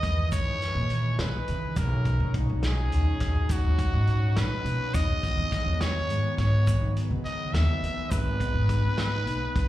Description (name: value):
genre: progressive instrumental, band music in an uneven meter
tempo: 208 BPM (eighths)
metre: 11/8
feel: straight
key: B major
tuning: A4 = 440 Hz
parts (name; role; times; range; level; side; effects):
- growling trumpet; melody; 0.0-9.7 s; F#4 to E5; -32 LUFS; equal; plate reverb, slapback echo
- airy breathy pad; accompaniment; 0.0-9.7 s; A#2 to B4; -34 LUFS; left 1 dB; chorus, slapback echo
- upright bass; bass; 0.0-9.7 s; G#1 to E3; -26 LUFS; equal; none
- loose indie drum kit; drums; 0.0-9.7 s; hi-hat, kick drum, snare drum; -30 LUFS; equal; none
- egg shaker; percussion; 0.3-8.8 s; none; -48 LUFS; left 4 dB; none
room: little or no reverb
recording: live gig heard through the venue's PA, club reverb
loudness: -24 LUFS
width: side -14 dB against mid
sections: 0.0-9.7 A section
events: none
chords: 0.0 C#m7; 1.8 Bmaj7; 4.9 Emaj7; 8.1 G#m